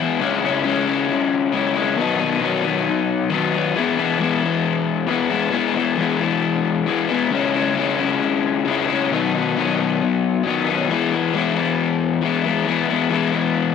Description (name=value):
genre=rock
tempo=135 BPM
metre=4/4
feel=straight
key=E major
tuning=A4 = 440 Hz
part: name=crunchy overdriven guitar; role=solo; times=0.0-13.7 s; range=B2 to E4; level=-17 LUFS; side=left 6 dB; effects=none
room=light reverb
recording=none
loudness=-17 LUFS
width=side -6 dB against mid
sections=0.0-10.9 A section; 10.9-13.7 B section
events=none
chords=0.2 C#m; 2.0 B; 3.8 E; 7.3 C#m; 9.1 B; 10.9 E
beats=| 0.21 0.65 1.09 1.54 | 1.98 2.42 2.87 3.31 | 3.76 4.20 4.65 5.09 | 5.54 5.98 6.43 6.87 | 7.32 7.76 8.21 8.65 | 9.10 9.54 9.99 10.44 | 10.88 11.33 11.77 12.22 | 12.67 13.11 13.56